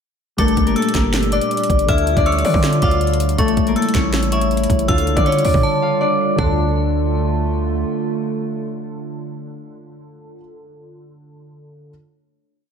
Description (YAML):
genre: hip hop, trap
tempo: 160 BPM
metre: 4/4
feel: half-time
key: D harmonic minor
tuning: A4 = 441 Hz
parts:
  - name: Celtic harp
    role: melody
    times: 0.4-9.2 s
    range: A3 to F5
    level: -20 LUFS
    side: left 4 dB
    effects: tape echo
  - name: metallic FM bell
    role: second line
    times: 0.4-7.5 s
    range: A5 to F6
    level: -26 LUFS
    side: equal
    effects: chorus, tape echo
  - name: dark concert grand piano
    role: accompaniment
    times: 0.4-11.9 s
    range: D3 to E5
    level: -28 LUFS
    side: right 1 dB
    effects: analog chorus
  - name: warbly tape-like pad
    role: sustained chords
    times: 0.7-10.1 s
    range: Bb2 to G4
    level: -24 LUFS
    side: right 2 dB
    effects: chorus, built-in reverb
  - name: hard-hitting 808-style bass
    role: bass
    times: 0.4-7.8 s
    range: G1 to D3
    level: -20 LUFS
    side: right 1 dB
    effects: none
  - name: trap drum kit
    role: drums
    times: 0.4-6.5 s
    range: handclaps, hi-hat, kick drum, snare drum, toms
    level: -21 LUFS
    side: right 1 dB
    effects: none
room: moderate plate reverb, RT60 1.6 s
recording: dreamy mix soaked in reverb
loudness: -15 LUFS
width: side -7 dB against mid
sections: 0.4-6.4 hook; 6.4-9.4 final chord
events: drums muted 5.6-6.4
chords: 0.4 Gmadd9; 1.9 Dm; 3.4 A; 4.9 Dm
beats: | 0.39 0.76 1.14 1.51 | 1.89 2.26 2.63 3.01 | 3.38 3.76 4.13 4.51 | 4.88 5.26 5.63 6.01 | 6.38 6.76 7.13 7.51 | 7.88 8.26 8.63 9.01